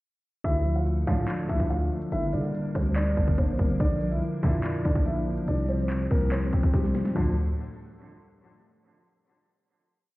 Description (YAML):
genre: hip hop, trap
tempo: 143 BPM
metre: 4/4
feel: half-time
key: D minor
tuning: A4 = 444 Hz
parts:
  - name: dark grand piano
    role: melody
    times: 0.4-7.4 s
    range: F3 to F5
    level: -32 LUFS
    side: equal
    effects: low-pass filter, ping-pong delay
  - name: tine electric piano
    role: accompaniment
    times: 0.4-7.4 s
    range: C3 to D5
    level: -30 LUFS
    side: left 1 dB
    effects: fast stereo tremolo, low-pass filter
  - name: hollow soft pad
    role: sustained chords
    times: 0.4-7.4 s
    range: F3 to Bb4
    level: -38 LUFS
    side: equal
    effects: ensemble chorus
  - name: growling 808-style bass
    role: bass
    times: 0.4-7.5 s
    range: G1 to D3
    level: -28 LUFS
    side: equal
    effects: none
  - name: trap drum kit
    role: drums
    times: 0.4-7.3 s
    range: crash cymbal, handclaps, hi-hat, kick drum, snare drum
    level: -27 LUFS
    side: equal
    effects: none
  - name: warm studio string section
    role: stabs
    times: 1.1-1.3, 4.4-4.6, 7.2-7.4 s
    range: A1 to F3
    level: -33 LUFS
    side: right 1 dB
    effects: ping-pong delay
room: digital ambience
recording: heard muffled through a wall, stone room reverb, EQ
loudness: -24 LUFS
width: side -19 dB against mid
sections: 0.4-7.2 hook; 7.2-8.8 final chord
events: drum fill 6.7-7.2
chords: 0.4 Dm; 2.1 Gm; 3.8 Bb; 5.5 Csus4; 7.2 Dm